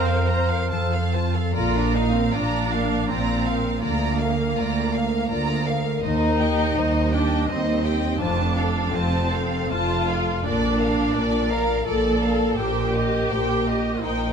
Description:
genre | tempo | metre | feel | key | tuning
classical, slow romantic movement for symphony orchestra | 68-86 BPM | 3/4 | rubato | Bb major | A4 = 438 Hz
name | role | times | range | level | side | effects
rich studio violin section | melody | 0.0-14.3 s | D5 to Bb5 | -30 LUFS | left 1 dB | none
clear oboe | second line | 0.0-1.2 s | F5 | -30 LUFS | right 2 dB | none
silver concert flute | second line | 0.0-0.7 s | C5 | -34 LUFS | equal | none
warm clarinet | second line | 0.0-1.2 s | A4 to Bb4 | -39 LUFS | left 3 dB | none
warm studio violin section | second line | 0.0-14.3 s | Eb4 to F5 | -29 LUFS | equal | none
rich studio viola section | accompaniment | 0.0-14.3 s | Bb3 to C5 | -26 LUFS | equal | none
mellow French horn section | sustained chords | 0.0-0.7 s | C4 | -34 LUFS | left 4 dB | none
concert harp | arpeggios | 0.0-14.3 s | F2 to Bb5 | -30 LUFS | left 10 dB | none
dark trumpet section | stabs | 0.0-0.7 s | C5 | -34 LUFS | right 3 dB | none
clear studio cello section | bass | 0.0-14.3 s | D2 to C4 | -26 LUFS | right 2 dB | none
rich studio double bass section | bass | 0.0-14.3 s | F1 to F2 | -26 LUFS | right 2 dB | none
room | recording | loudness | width
moderate recital hall reverb, RT60 1.4 s | none | -20 LUFS | side -7 dB against mid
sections
0.0-1.6 A section; 1.6-14.3 B section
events
none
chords
0.0 Fsus4; 0.7 F; 1.6 Bb; 3.8 Bb/D; 6.0 Cm/Eb; 8.2 F; 10.4 Bb; 12.6 Cm7/Bb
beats
0.72 | 1.57 2.35 3.10 | 3.83 4.57 5.31 | 6.04 6.78 7.50 | 8.21 8.92 9.71 | 10.44 11.15 11.86 | 12.58 13.30 14.03

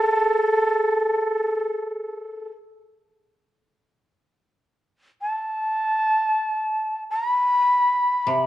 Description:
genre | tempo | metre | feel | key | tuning
japanese traditional, Japanese chamber music | free time | none | none | A hirajoshi | A4 = 440 Hz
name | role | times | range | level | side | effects
breathy shakuhachi | melody | 0.0-8.5 s | A4 to C6 | -20 LUFS | equal | none
koto | accompaniment | 8.3-8.5 s | C3 | -22 LUFS | equal | none
room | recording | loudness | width
wet recital hall reverb, RT60 1.6 s | dark, warm production | -20 LUFS | side -14 dB against mid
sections
0.0-3.9 A section; 3.9-8.5 A section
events
none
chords
none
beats
free time

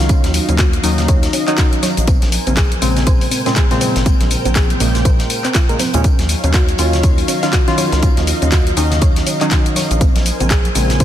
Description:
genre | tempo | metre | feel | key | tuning
deep house | 121 BPM | 4/4 | swing 59% on 16ths | Eb minor | A4 = 435 Hz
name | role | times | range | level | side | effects
soft string machine | sustained chords | 0.0-11.0 s | Gb3 to Ab5 | -24 LUFS | equal | ensemble chorus, sidechain pumping
warm analog keys | stabs | 0.0-11.0 s | Bb2 to F4 | -20 LUFS | equal | chorus, sidechain pumping, ping-pong delay
rubbery square bass | bass | 0.0-11.0 s | Ab1 to Eb2 | -18 LUFS | equal | tube saturation, sidechain pumping
house drum kit | drums | 0.0-11.0 s | cabasa, handclaps, hi-hat | -21 LUFS | left 2 dB | none
soft round pluck | arpeggios | 0.1-11.0 s | C4 to Db5 | -24 LUFS | right 2 dB | chorus, sidechain pumping, ping-pong delay
electronic kick drum | drums | 0.1-11.0 s | none | -14 LUFS | equal | none
tight metal drum kit | drums | 0.1-11.0 s | hi-hat, snare drum, tambourine | -29 LUFS | equal | high-pass filter on hats, high-pass filter on snare, high-pass filter on perc, high-pass filter on room
congas | percussion | 0.2-11.0 s | none | -27 LUFS | right 3 dB | none
room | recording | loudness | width
little or no reverb | dense, heavily limited modern master | -12 LUFS | side -11 dB against mid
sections
0.0-11.0 A section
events
none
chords
0.0 Ebm9; 2.1 Bbm9; 6.0 Ebm9; 10.0 Bbm9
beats
| 0.09 0.59 1.08 1.58 | 2.08 2.57 3.07 3.56 | 4.06 4.56 5.05 5.55 | 6.04 6.54 7.04 7.53 | 8.03 8.52 9.02 9.52 | 10.01 10.51 11.00

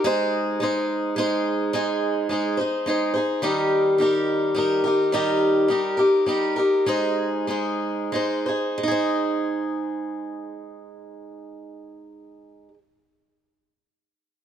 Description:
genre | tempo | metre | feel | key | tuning
country | 85-107 BPM | 3/4 | straight | Ab major | A4 = 438 Hz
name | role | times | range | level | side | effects
picked swing-style acoustic guitar | solo | 0.0-12.8 s | Eb3 to C5 | -21 LUFS | equal | none
room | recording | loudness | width
moderate plate reverb, RT60 2.4 s | dark, warm production | -20 LUFS | side -9 dB against mid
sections
0.0-1.7 A section; 1.7-8.8 B section; 8.8-13.1 C section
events
slowing down 5.1-8.8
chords
0.1 Ab; 3.4 Eb; 6.9 Ab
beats
| 0.06 0.62 1.18 | 1.74 2.31 2.87 | 3.43 4.00 4.56 | 5.12 5.69 6.27 | 6.87 7.48 8.13 | 8.82 9.52 10.23 | 10.94 11.64 12.35

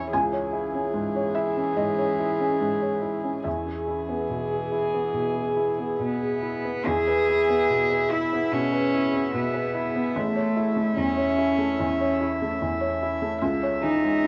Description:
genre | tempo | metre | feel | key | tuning
neoclassical piano and strings | 73 BPM | 4/4 | rubato | E major | A4 = 439 Hz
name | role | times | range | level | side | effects
warm cello | second line | 0.0-14.3 s | E3 to G#4 | -29 LUFS | equal | none
felt-muted upright piano | accompaniment | 0.0-14.3 s | A1 to G#5 | -30 LUFS | equal | none
warm viola | accompaniment | 0.0-14.3 s | G#4 to E5 | -31 LUFS | equal | none
glassy FM pad | sustained chords | 0.1-14.3 s | B3 to E5 | -37 LUFS | equal | none
room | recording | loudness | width
light reverb | worn, warbling old tape, cassette tape, warbly pitch drift, small room ambience | -25 LUFS | mono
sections
0.0-6.9 A section; 6.9-14.3 B section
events
none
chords
0.1 C#m; 3.5 E; 10.1 A; 13.4 C#m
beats
| 0.12 0.95 1.77 2.60 | 3.45 4.30 5.15 6.00 | 6.87 7.69 8.52 9.33 | 10.15 10.97 11.79 12.61 | 13.42 14.24

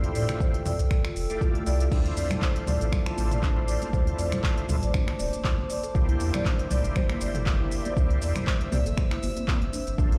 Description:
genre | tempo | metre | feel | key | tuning
afro house | 119 BPM | 4/4 | swing 55% on 16ths | unclear | A4 = 440 Hz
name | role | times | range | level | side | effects
dark analog pad | sustained chords | 0.0-10.2 s | Bb3 to E6 | -39 LUFS | equal | chorus, phaser, sidechain pumping
buzzing marimba with soft mallets | arpeggios | 0.0-10.1 s | A3 to D5 | -37 LUFS | equal | sidechain pumping, tape echo
overdriven tonewheel organ | stabs | 0.0-10.2 s | A3 to D5 | -38 LUFS | equal | chorus vibrato, slow rotary speaker, sidechain pumping, tape echo
warm sub bass | bass | 0.0-10.2 s | D1 to A2 | -30 LUFS | equal | sidechain pumping
deep house drum kit | drums | 0.0-10.2 s | crash cymbal, finger snaps, handclaps, hi-hat, shaker, toms | -36 LUFS | equal | none
electronic kick drum | drums | 0.4-10.1 s | none | -28 LUFS | equal | none
congas | percussion | 1.9-10.1 s | none | -38 LUFS | equal | none
room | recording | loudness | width
little or no reverb | played on a big sound system in a bare room, large studio reverb | -26 LUFS | mono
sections
0.0-10.2 A section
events
none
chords
0.0 Fmaj9; 1.9 Dm7; 6.0 C9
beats
0.40 0.91 1.41 | 1.92 2.42 2.92 3.43 | 3.93 4.44 4.94 5.45 | 5.95 6.45 6.96 7.46 | 7.97 8.47 8.97 9.48 | 9.98

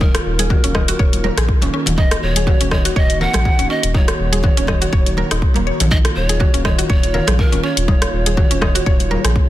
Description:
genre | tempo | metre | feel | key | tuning
afro house | 122 BPM | 4/4 | swing 55% on 16ths | Eb minor | A4 = 443 Hz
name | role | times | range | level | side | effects
breathy mellow pan flute | melody | 0.0-9.5 s | Bb4 to Gb5 | -24 LUFS | equal | dub echo
warm analog pad | sustained chords | 0.0-9.5 s | Eb3 to Gb4 | -26 LUFS | right 1 dB | chorus, vintage 12-bit sampler grit, sidechain pumping
mallet-like synth pluck | arpeggios | 0.0-9.3 s | Bb3 to Eb5 | -24 LUFS | right 1 dB | chorus, sidechain pumping, dub echo
round analog bass | bass | 0.0-9.4 s | Eb1 to Bb1 | -20 LUFS | equal | sidechain pumping
electronic kick drum | drums | 0.0-9.5 s | none | -16 LUFS | equal | small room reverb
congas | percussion | 0.0-9.2 s | none | -25 LUFS | left 2 dB | none
house drum kit | drums | 0.1-9.3 s | hi-hat, rim click | -22 LUFS | left 1 dB | soft clipping on snare, small room reverb
room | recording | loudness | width
little or no reverb | dense, heavily limited modern master | -13 LUFS | side -14 dB against mid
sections
0.0-9.5 A section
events
none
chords
0.0 Ebm7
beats
| 0.01 0.50 0.99 1.49 | 1.98 2.47 2.96 3.45 | 3.94 4.44 4.93 5.42 | 5.91 6.40 6.90 7.39 | 7.88 8.37 8.86 9.36

